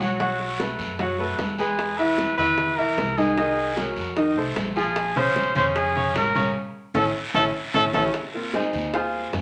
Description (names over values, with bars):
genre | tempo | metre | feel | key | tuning
Afro-Cuban jazz | 151 BPM | 4/4 | straight | unclear | A4 = 435 Hz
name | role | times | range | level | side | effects
warm trumpet | melody | 0.0-8.0 s | Gb4 to C5 | -26 LUFS | equal | none
clear baby grand piano | accompaniment | 0.0-9.4 s | Db3 to Gb5 | -27 LUFS | equal | none
upright bass | bass | 0.0-9.4 s | A1 to F#2 | -37 LUFS | equal | none
congas | percussion | 0.0-9.4 s | none | -36 LUFS | equal | none
guiro | percussion | 0.0-9.4 s | none | -37 LUFS | equal | none
bongos | percussion | 0.2-9.4 s | none | -35 LUFS | equal | none
room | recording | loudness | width
wet studio reverb, RT60 0.8 s | none | -24 LUFS | mono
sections
0.0-8.1 A section; 8.1-9.4 B section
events
band accent 6.5-8.1; drum fill 7.1-8.1; grand piano solo 8.1-9.4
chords
0.2 B5; 1.8 Emaj7; 3.4 Cm7b5; 4.2 F7; 5.0 Bbm9; 6.5 A; 8.1 Ab6